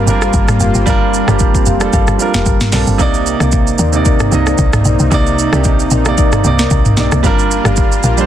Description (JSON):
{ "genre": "amapiano", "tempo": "113 BPM", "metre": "4/4", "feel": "swing 55% on 16ths", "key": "C minor", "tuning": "A4 = 440 Hz", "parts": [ { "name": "warm grand piano", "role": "accompaniment", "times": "0.0-8.3 s", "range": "C3 to Eb5", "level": "-16 LUFS", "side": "right 6 dB", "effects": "none" }, { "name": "warm analog pad", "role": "sustained chords", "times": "0.0-8.3 s", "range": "C3 to F4", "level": "-20 LUFS", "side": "equal", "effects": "chorus, sidechain pumping" }, { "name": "tight log drum bass", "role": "bass", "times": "0.1-8.3 s", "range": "F1 to Eb2", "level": "-15 LUFS", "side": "equal", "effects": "none" }, { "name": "afro-pop drum kit", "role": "drums", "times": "0.1-8.3 s", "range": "hi-hat, kick drum, rim click, shaker, snare drum, toms", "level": "-14 LUFS", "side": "equal", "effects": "vintage 12-bit sampler grit" }, { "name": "marimba with medium mallets", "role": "stabs", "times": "0.2-8.2 s", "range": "Eb4 to F5", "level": "-21 LUFS", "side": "left 9 dB", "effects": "ping-pong delay" } ], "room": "digital ambience", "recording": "dense, heavily limited modern master", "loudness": "-10 LUFS", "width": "side -11 dB against mid", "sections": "0.0-8.3 A section", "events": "none", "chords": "0.0 Gm7; 3.0 Cm9; 7.2 Gm7", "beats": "0.34 | 0.87 1.40 1.93 2.46 | 2.99 3.52 4.06 4.59 | 5.12 5.65 6.18 6.71 | 7.24 7.77" }